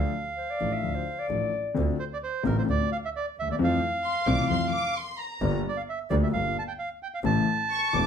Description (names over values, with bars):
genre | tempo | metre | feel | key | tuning
tango | 131 BPM | 4/4 | rubato | D minor | A4 = 438 Hz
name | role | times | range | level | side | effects
bandoneon | melody | 0.0-8.1 s | Bb4 to A5 | -30 LUFS | right 2 dB | slapback echo
warm concert grand piano | accompaniment | 0.0-8.1 s | E1 to A4 | -28 LUFS | left 4 dB | none
rich double bass | bass | 0.0-8.1 s | E1 to F2 | -29 LUFS | right 2 dB | none
mellow clarinet | second line | 0.4-1.8 s | C5 to E5 | -31 LUFS | left 3 dB | none
warm studio violin section | second line | 4.0-8.1 s | Bb5 to D6 | -30 LUFS | left 3 dB | none
room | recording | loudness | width
wet club reverb, RT60 0.5 s | heard from further back in the room | -25 LUFS | side -8 dB against mid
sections
0.0-1.8 A section; 1.8-8.1 A section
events
none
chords
0.0 Dm; 1.8 Dm7; 3.6 Fmaj7; 5.4 Gm7; 7.3 A